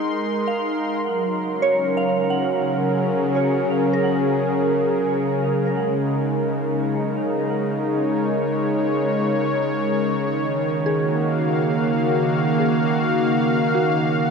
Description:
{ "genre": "ambient", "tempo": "52 BPM", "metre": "4/4", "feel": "straight", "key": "unclear", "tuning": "A4 = 440 Hz", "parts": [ { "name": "warm analog pad", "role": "sustained chords", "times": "0.0-14.3 s", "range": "Eb3 to C6", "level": "-20 LUFS", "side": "equal", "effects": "chorus" }, { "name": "soft synth bell", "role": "arpeggios", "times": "0.0-14.3 s", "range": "Gb4 to Gb5", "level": "-27 LUFS", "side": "right 1 dB", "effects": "chorus, diffuse ambient delay" }, { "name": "bowed-like drone", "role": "drone", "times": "1.9-14.3 s", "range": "Db3", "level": "-27 LUFS", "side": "left 1 dB", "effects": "built-in reverb" } ], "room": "wet huge ambient reverb, RT60 7.7 s", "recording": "dark, warm production", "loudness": "-19 LUFS", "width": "side -5 dB against mid", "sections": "0.0-1.1 A section; 1.1-14.3 B section", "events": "fade-out on synth bell 1.1-14.3", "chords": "0.0 Ab7; 1.1 Gbmaj7; 5.7 Ab7sus4", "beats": "| 1.06 2.21 3.36 4.52 | 5.67 6.83 7.98 9.13 | 10.29 11.44 12.59 13.75" }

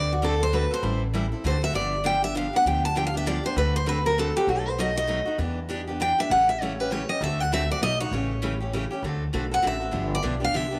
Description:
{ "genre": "acoustic string swing (jazz manouche)", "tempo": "198 BPM", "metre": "3/4", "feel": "swing 60% on 8ths", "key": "D mixolydian", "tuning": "A4 = 440 Hz", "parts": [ { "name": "picked steel-string acoustic guitar", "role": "melody", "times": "0.0-10.8 s", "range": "F#4 to A5", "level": "-27 LUFS", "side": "equal", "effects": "none" }, { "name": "picked steel-string acoustic guitar", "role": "accompaniment", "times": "0.0-10.8 s", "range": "B2 to A4", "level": "-32 LUFS", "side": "equal", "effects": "none" }, { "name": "upright bass", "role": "bass", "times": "0.0-10.8 s", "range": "G1 to E2", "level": "-31 LUFS", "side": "equal", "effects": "none" } ], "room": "light reverb, studio ambience", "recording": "none", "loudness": "-25 LUFS", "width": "mono", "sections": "0.0-9.0 A section; 9.0-10.8 A section", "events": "steel-string acoustic guitar solo 0.0-10.8", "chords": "0.0 D7; 0.8 Am7; 1.4 D7; 1.7 G7; 3.6 D7; 4.5 B7; 5.4 Em7; 6.3 A7; 7.2 D7; 7.8 B7; 8.1 A7; 9.0 D7; 9.9 G7", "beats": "0.23 0.53 | 0.83 1.14 1.44 | 1.75 2.05 2.35 | 2.66 2.96 3.27 | 3.57 3.87 4.18 | 4.48 4.78 5.09 | 5.39 5.69 6.00 | 6.30 6.60 6.90 | 7.21 7.51 7.81 | 8.12 8.42 8.72 | 9.02 9.33 9.63 | 9.93 10.24 10.54" }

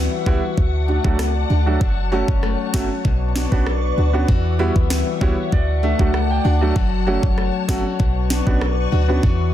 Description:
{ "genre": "dancehall", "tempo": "97 BPM", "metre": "4/4", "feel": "straight", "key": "unclear", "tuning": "A4 = 443 Hz", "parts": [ { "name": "glassy FM pad", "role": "sustained chords", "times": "0.0-9.5 s", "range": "E4 to C#6", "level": "-27 LUFS", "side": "left 3 dB", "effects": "ensemble chorus, built-in reverb, sidechain pumping" }, { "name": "picked plugged-in acoustic archtop guitar", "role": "arpeggios", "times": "0.0-9.5 s", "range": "B2 to F#4", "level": "-26 LUFS", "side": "left 8 dB", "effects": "ping-pong delay" }, { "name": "clean 808-style bass", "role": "bass", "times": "0.0-9.5 s", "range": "F#1 to E2", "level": "-20 LUFS", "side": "equal", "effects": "none" }, { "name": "warm grand piano", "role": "accompaniment", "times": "0.3-9.2 s", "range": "F#3 to G5", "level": "-24 LUFS", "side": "right 4 dB", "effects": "none" }, { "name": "island pop drum kit", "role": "drums", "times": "0.3-9.4 s", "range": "kick drum, rim click, snare drum", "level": "-20 LUFS", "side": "equal", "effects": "overdrive" } ], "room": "digital ambience", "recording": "dense, heavily limited modern master", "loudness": "-16 LUFS", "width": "side -12 dB against mid", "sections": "0.0-9.5 A section", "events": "grand piano fill 4.9-6.8", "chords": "0.0 Emadd9; 0.6 D; 1.8 F#m; 3.0 Bmadd9; 4.3 Emadd9; 5.5 D; 6.8 F#m; 8.0 Bmadd9", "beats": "0.57 1.19 | 1.81 2.43 3.05 3.67 | 4.29 4.90 5.52 6.14 | 6.76 7.38 8.00 8.62 | 9.23" }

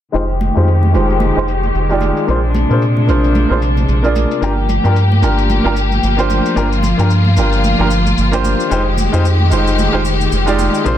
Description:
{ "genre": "sunset chillout", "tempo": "112 BPM", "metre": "4/4", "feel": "swing 57% on 16ths", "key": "F dorian", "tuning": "A4 = 439 Hz", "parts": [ { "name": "clear grand piano", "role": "accompaniment", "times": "0.1-10.9 s", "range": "Ab3 to D5", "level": "-18 LUFS", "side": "moving between left 3 dB and right 4 dB", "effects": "auto-pan, low-pass filter, digital delay" }, { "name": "rich studio string section", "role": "sustained chords", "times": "0.1-11.0 s", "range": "C3 to G4", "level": "-18 LUFS", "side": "left 2 dB", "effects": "vintage 12-bit sampler grit, low-pass filter" }, { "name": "round analog bass", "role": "bass", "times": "0.1-11.0 s", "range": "F1 to Bb2", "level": "-14 LUFS", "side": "equal", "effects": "none" }, { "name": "shaker", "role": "drums", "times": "0.1-11.0 s", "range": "none", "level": "-33 LUFS", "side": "left 3 dB", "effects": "low-pass filter on perc, low-pass filter on room" }, { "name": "congas", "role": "percussion", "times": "0.4-10.7 s", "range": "none", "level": "-24 LUFS", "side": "right 2 dB", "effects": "none" } ], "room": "light reverb, small room ambience", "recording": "dense, heavily limited modern master", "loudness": "-12 LUFS", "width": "side -11 dB against mid", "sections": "0.1-11.0 A section", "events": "filter sweep on analog synth bass 0.1-11.0; filter sweep on grand piano 0.1-11.0; filter sweep on string section 0.1-11.0", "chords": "0.1 Fm9; 2.3 Bb9; 4.4 Gm7; 8.7 Fm9", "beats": "| 0.14 0.68 1.21 1.75 | 2.28 2.82 3.35 3.89 | 4.42 4.96 5.50 6.03 | 6.57 7.10 7.64 8.18 | 8.71 9.25 9.78 10.32 | 10.85" }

